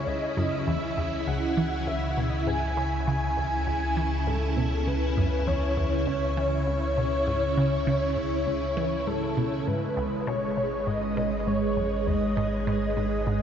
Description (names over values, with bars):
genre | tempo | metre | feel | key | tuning
ambient, sequencer-driven space music | 100 BPM | 4/4 | straight | C# minor | A4 = 440 Hz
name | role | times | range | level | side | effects
breathy flute-like synth lead | melody | 0.0-13.4 s | A4 to G#5 | -30 LUFS | equal | ensemble chorus, ping-pong delay
phased string machine | sustained chords | 0.0-13.4 s | C#3 to G#5 | -30 LUFS | equal | ensemble chorus, phaser
warm sub bass | bass | 0.0-13.4 s | G#1 to C#2 | -31 LUFS | equal | none
resonant blip pluck | riff | 0.1-13.4 s | C#2 to E3 | -31 LUFS | equal | phaser, ping-pong delay
room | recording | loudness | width
wet huge ambient reverb, RT60 7.2 s | dark, warm production, nothing above 7.6 kHz | -24 LUFS | side -8 dB against mid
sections
0.0-13.4 A section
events
none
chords
0.0 C#m; 9.7 G#m